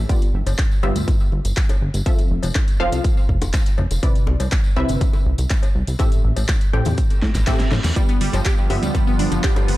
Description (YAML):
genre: progressive house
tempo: 122 BPM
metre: 4/4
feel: straight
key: G mixolydian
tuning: A4 = 440 Hz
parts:
  - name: wide unison pluck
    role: stabs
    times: 0.0-9.8 s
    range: G2 to G5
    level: -26 LUFS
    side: equal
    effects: phaser, sidechain pumping, dub echo
  - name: plucky analog bass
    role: bass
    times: 0.0-9.8 s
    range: F1 to A2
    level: -21 LUFS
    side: equal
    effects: tube saturation, sidechain pumping
  - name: deep house drum kit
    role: drums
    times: 0.1-9.8 s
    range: handclaps, hi-hat, snare drum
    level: -28 LUFS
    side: equal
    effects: none
  - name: electronic kick drum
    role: drums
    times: 0.1-9.5 s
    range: none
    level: -18 LUFS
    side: equal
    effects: none
  - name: tambourine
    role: percussion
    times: 0.1-9.7 s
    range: none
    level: -38 LUFS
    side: left 2 dB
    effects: none
  - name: bongos, cowbell and congas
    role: percussion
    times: 0.5-9.7 s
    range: none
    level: -32 LUFS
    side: left 5 dB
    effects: sidechain pumping on perc
  - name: reverse cymbal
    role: sound effects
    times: 7.2-8.0 s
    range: none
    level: -32 LUFS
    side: right 1 dB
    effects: none
  - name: evolving wavetable pad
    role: sustained chords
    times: 8.6-9.8 s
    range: D3 to F4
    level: -26 LUFS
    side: equal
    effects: ensemble chorus, built-in reverb, sidechain pumping
  - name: glassy wavetable pluck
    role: arpeggios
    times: 8.0-9.7 s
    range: G2 to G4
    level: -24 LUFS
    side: right 2 dB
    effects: chorus, phaser, sidechain pumping, dub echo
room: digital ambience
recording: dark, warm production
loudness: -16 LUFS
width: side -17 dB against mid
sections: 0.0-9.8 A section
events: reverse cymbal 7.2-8.0; drum fill 7.2-8.0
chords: 0.1 G7; 2.1 Fmaj7; 4.0 Cmaj9; 6.0 Am7; 8.0 G7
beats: | 0.09 0.59 1.08 1.57 | 2.06 2.55 3.04 3.54 | 4.03 4.52 5.01 5.50 | 6.00 6.49 6.98 7.47 | 7.96 8.46 8.95 9.44